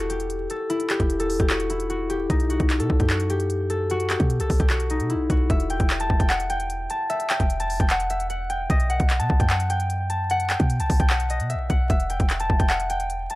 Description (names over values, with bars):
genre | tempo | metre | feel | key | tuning
hip hop, trap | 150 BPM | 4/4 | half-time | E harmonic minor | A4 = 441 Hz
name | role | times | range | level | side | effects
concert harp | melody | 0.0-13.4 s | D#4 to A5 | -25 LUFS | left 1 dB | analog delay
clean 808-style bass | bass | 0.0-13.3 s | E1 to B2 | -26 LUFS | equal | none
trap drum kit | drums | 0.0-13.4 s | handclaps, hi-hat, kick drum | -23 LUFS | equal | none
room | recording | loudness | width
little or no reverb | dry, gritty hardware recording, vinyl crackle | -20 LUFS | side -18 dB against mid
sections
0.0-5.5 A section; 5.5-13.4 B section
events
none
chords
0.0 Em; 2.3 B5; 5.5 Em; 8.7 B5; 11.9 Em